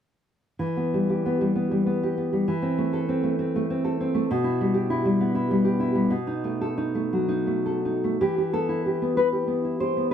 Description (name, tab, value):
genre	romantic piece for solo classical guitar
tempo	51-68 BPM (dotted quarters)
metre	6/8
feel	rubato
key	E minor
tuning	A4 = 442 Hz
part	nylon-string guitar	solo	0.6-10.1 s	B2 to C5	-22 LUFS	equal	none
room	light reverb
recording	close, detailed microphones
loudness	-22 LUFS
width	side -9 dB against mid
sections	0.6-8.2 A section; 8.2-10.1 B section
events	none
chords	0.6 Em; 2.5 Am/E; 4.3 Em/B; 6.1 B7; 8.2 Em